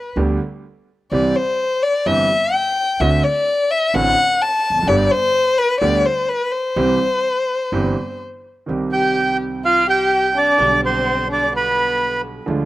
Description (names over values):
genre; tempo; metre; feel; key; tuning
tango; 127 BPM; 4/4; rubato; C major, C harmonic minor from 8.7 s; A4 = 435 Hz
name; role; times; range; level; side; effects
warm violin; second line; 0.0-12.2 s; B3 to A5; -18 LUFS; left 2 dB; none
warm concert grand piano; accompaniment; 0.2-12.7 s; G1 to G4; -22 LUFS; right 3 dB; slapback echo
upright bass; bass; 0.2-12.7 s; E1 to D2; -26 LUFS; right 1 dB; none
bandoneon; melody; 8.9-12.2 s; B4 to G5; -16 LUFS; right 2 dB; slapback echo
room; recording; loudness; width
light reverb; recorded outdoors, with no room sound; -15 LUFS; side -16 dB against mid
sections
0.0-8.7 A section; 8.7-12.7 B section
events
violin solo 0.0-8.7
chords
0.0 G; 1.1 C; 3.0 D7; 4.9 G; 6.8 C; 8.7 Cm; 10.6 G/B